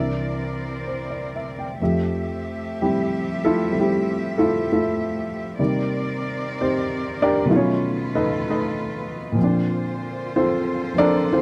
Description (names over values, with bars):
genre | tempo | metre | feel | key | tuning
jazz ballad | 63 BPM | 4/4 | swing 66% on 8ths | F major | A4 = 440 Hz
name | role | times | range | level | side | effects
dark baby grand piano | accompaniment | 0.0-11.4 s | C2 to G5 | -23 LUFS | equal | none
rich studio cello section | sustained chords | 0.0-11.4 s | D3 to E5 | -32 LUFS | equal | none
room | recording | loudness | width
light reverb | close, detailed microphones | -23 LUFS | mono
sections
0.0-1.8 A section; 1.8-11.4 B section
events
none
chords
0.0 C9; 1.8 Fmaj9; 5.6 Cm9; 7.5 B7#11; 9.4 Bbmaj9